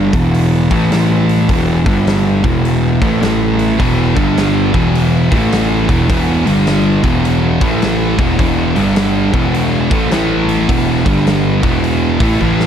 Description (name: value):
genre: stoner and doom metal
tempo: 104 BPM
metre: 4/4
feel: swing 64% on 8ths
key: E minor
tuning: A4 = 441 Hz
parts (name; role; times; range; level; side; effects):
- thick fuzz guitar; riff; 0.0-12.7 s; E2 to A3; -17 LUFS; left 8 dB; distortion
- thick fuzz guitar; riff; 0.0-12.7 s; E2 to A3; -16 LUFS; right 8 dB; distortion
- fuzz picked electric bass; bass; 0.0-12.7 s; E1 to A1; -18 LUFS; equal; overdrive
- big rock drum kit; drums; 0.1-12.7 s; hi-hat, kick drum, snare drum; -18 LUFS; equal; none
- scooped high-gain guitar; riff; 3.8-12.7 s; E2 to A3; -21 LUFS; equal; distortion
room: little or no reverb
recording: dark, warm production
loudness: -11 LUFS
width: side -8 dB against mid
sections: 0.0-12.7 A section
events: drum fill 12.4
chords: 0.1 E5; 0.9 A5; 1.5 E5; 1.8 G5; 2.4 E5; 3.2 A5; 3.8 E5; 4.1 G5; 4.7 E5; 5.2 A5; 5.8 E5; 6.4 G5; 7.0 E5; 7.5 A5; 8.1 E5; 8.7 G5; 9.3 E5; 10.1 A5; 10.7 E5; 11.0 G5; 11.6 E5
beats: 0.34 0.92 | 1.49 2.07 2.65 3.22 | 3.80 4.37 4.95 5.52 | 6.10 6.67 7.25 7.82 | 8.39 8.97 9.54 10.12 | 10.69 11.26 11.84 12.41